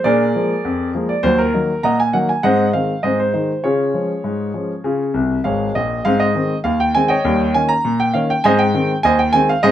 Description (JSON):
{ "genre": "ragtime piano", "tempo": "100 BPM", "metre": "2/4", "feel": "straight", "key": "Db major, Ab major from 6.1 s", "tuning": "A4 = 440 Hz", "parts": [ { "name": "warm grand piano", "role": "solo", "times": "0.0-9.7 s", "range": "Ab1 to Bb5", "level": "-15 LUFS", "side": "equal", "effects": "none" } ], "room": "moderate studio reverb, RT60 0.6 s", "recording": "none", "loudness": "-15 LUFS", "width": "side -11 dB against mid", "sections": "0.0-6.1 A section; 6.1-9.7 B section", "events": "grand piano fill 5.2-6.1", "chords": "0.0 Bb7; 1.3 Ebm; 2.4 Ab; 3.6 Db; 6.1 Ab; 7.3 Eb7; 8.5 Ab" }